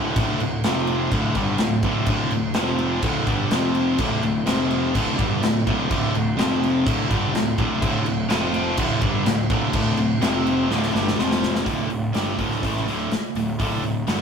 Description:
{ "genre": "hard rock", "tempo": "125 BPM", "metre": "4/4", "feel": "straight", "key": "unclear", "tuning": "A4 = 440 Hz", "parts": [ { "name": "high-gain distorted guitar", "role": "riff", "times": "0.0-14.2 s", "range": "D2 to A3", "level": "-22 LUFS", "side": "equal", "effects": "distortion" }, { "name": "fuzz picked electric bass", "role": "bass", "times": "0.0-14.2 s", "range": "D1 to A1", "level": "-27 LUFS", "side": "equal", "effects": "overdrive" }, { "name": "big rock drum kit", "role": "drums", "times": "0.2-14.2 s", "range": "crash cymbal, hi-hat, kick drum, snare drum", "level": "-24 LUFS", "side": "equal", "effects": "none" } ], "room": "moderate small room ambience, RT60 0.5 s", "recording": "rough rehearsal-room recording", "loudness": "-19 LUFS", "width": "side -6 dB against mid", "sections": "0.0-11.7 A section; 11.7-14.2 B section", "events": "drum fill 10.7-11.7", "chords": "0.0 D5; 0.6 F5; 1.1 D5; 2.6 F5; 3.0 D5; 3.5 F5; 4.0 D5; 4.5 F5; 5.0 D5; 6.4 F5; 6.9 D5; 8.3 F5; 8.8 D5; 10.2 F5; 10.7 D5; 11.2 F5; 11.7 D5" }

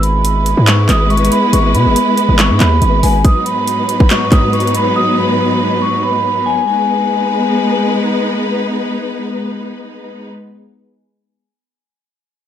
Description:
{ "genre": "hip hop, trap", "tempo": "140 BPM", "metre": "4/4", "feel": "half-time", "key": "G# minor", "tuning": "A4 = 440 Hz", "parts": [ { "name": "vibraphone with medium mallets", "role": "melody", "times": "0.0-7.9 s", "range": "G#5 to D#6", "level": "-16 LUFS", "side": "right 1 dB", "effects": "low-pass filter" }, { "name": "clear symphonic string section", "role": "sustained chords", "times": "0.0-10.3 s", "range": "G#2 to B4", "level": "-16 LUFS", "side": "left 1 dB", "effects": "none" }, { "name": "hard-hitting 808-style bass", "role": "bass", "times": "0.0-3.2 s", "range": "G#1 to B2", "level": "-12 LUFS", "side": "equal", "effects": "none" }, { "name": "trap drum kit", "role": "drums", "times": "0.0-4.9 s", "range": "handclaps, hi-hat, kick drum", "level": "-13 LUFS", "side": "equal", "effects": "overdrive" } ], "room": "light reverb, studio ambience", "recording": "none", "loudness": "-11 LUFS", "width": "side -10 dB against mid", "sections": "0.0-6.7 A section; 6.7-10.1 B section", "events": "none", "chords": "0.0 E/G#; 3.2 B/G#; 6.7 G#m" }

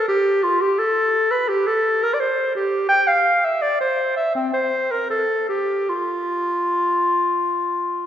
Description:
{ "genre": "classical, baroque-style fantasia for unaccompanied clarinet", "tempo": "76-86 BPM", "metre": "4/4", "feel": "rubato", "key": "F major", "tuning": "A4 = 440 Hz", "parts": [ { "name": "clear clarinet", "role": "solo", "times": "0.0-8.1 s", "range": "C4 to G5", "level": "-18 LUFS", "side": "equal", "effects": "none" } ], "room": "wet church reverb, RT60 2.9 s", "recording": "heard from further back in the room, nothing above 8.0 kHz", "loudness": "-18 LUFS", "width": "side -10 dB against mid", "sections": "0.0-8.1 A section", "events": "none", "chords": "none" }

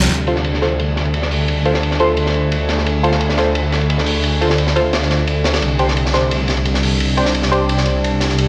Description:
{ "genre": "dark technical drum and bass", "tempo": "174 BPM", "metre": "4/4", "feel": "straight", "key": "D minor", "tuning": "A4 = 440 Hz", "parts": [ { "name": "metallic inharmonic drone", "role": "sustained chords", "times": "0.0-8.5 s", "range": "C3 to D4", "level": "-23 LUFS", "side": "equal", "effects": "chorus, built-in reverb" }, { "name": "band-passed chord stab", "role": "stabs", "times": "0.0-8.5 s", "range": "D4 to C5", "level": "-22 LUFS", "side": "equal", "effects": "chorus, phaser, delay" }, { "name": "snarling distorted saw bass", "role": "bass", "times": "0.1-8.5 s", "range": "C2 to D2", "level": "-21 LUFS", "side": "equal", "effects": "distortion, tube saturation" }, { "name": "crunchy breakbeat drum kit", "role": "drums", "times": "0.1-8.5 s", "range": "hi-hat, ride cymbal, snare drum", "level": "-23 LUFS", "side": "equal", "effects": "high-pass filter on cymbals, low-pass filter on cymbals, high-pass filter on hats, low-pass filter on hats, high-pass filter on snare, low-pass filter on snare, high-pass filter on room, low-pass filter on room" } ], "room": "moderate digital room reverb, RT60 1.1 s, small room reverb", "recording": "none", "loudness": "-17 LUFS", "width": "mono", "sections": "0.1-8.5 A section", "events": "none", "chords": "0.1 Dm7; 5.6 Csus2" }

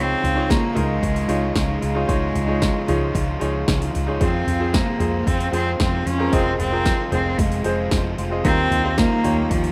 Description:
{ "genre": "piano-driven pop", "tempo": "113 BPM", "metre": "4/4", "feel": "straight", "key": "unclear", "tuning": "A4 = 439 Hz", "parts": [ { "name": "rich cello", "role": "melody", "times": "0.0-9.7 s", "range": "F3 to Db4", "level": "-26 LUFS", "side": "equal", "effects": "none" }, { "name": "bright grand piano", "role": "accompaniment", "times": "0.0-9.7 s", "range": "Db3 to Eb5", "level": "-28 LUFS", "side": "equal", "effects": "none" }, { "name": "airy breathy pad", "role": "sustained chords", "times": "0.0-9.7 s", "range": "G4 to Db6", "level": "-39 LUFS", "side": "equal", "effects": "none" }, { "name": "crunchy overdriven guitar", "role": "riff", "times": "0.0-9.7 s", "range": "F2 to F4", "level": "-31 LUFS", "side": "equal", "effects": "none" }, { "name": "vintage muted fingered electric bass", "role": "bass", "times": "0.0-9.7 s", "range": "F1 to F2", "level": "-27 LUFS", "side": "equal", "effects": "none" }, { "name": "deep house drum kit", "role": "drums", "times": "0.2-9.7 s", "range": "hi-hat, kick drum, snare drum, toms", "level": "-26 LUFS", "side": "equal", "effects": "overdrive" } ], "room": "moderate small room reverb, RT60 0.5 s", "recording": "rough home demo mix", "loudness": "-21 LUFS", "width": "mono", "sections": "0.0-9.7 A section", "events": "none", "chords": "0.0 Dbadd9; 4.2 Fm; 8.5 Ebadd9" }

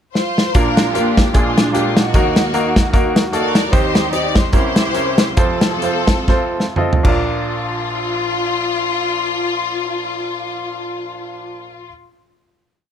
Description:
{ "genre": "uptempo gospel", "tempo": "113-152 BPM", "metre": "4/4", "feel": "swing 56% on 8ths", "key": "Bb major", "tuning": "A4 = 440 Hz", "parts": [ { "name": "clear studio string section", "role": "melody", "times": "0.1-11.9 s", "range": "Ab3 to D5", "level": "-20 LUFS", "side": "left 2 dB", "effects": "none" }, { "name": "natural country drum kit", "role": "drums", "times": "0.2-7.2 s", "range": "crash cymbal, hi-hat, kick drum, snare drum, toms", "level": "-15 LUFS", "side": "equal", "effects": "none" }, { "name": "muted French horn section", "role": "sustained chords", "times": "0.5-11.9 s", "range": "Eb2 to G4", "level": "-29 LUFS", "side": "right 4 dB", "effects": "none" }, { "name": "bright baby grand piano", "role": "accompaniment", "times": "0.6-11.9 s", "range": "F1 to Eb5", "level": "-20 LUFS", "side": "right 1 dB", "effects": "none" } ], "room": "little or no reverb", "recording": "none", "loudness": "-14 LUFS", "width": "side -9 dB against mid", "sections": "0.0-0.6 pickup bar; 0.6-7.3 breakdown; 7.3-11.5 final hit", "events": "drum fill 0.2-0.6, 6.3-7.3; slowing down 3.7-7.3", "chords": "0.0 N.C.; 0.6 Bb; 1.3 Bb7; 2.1 Ebm; 3.7 Cm/Eb; 4.5 C7b9; 5.4 F; 7.0 Bb" }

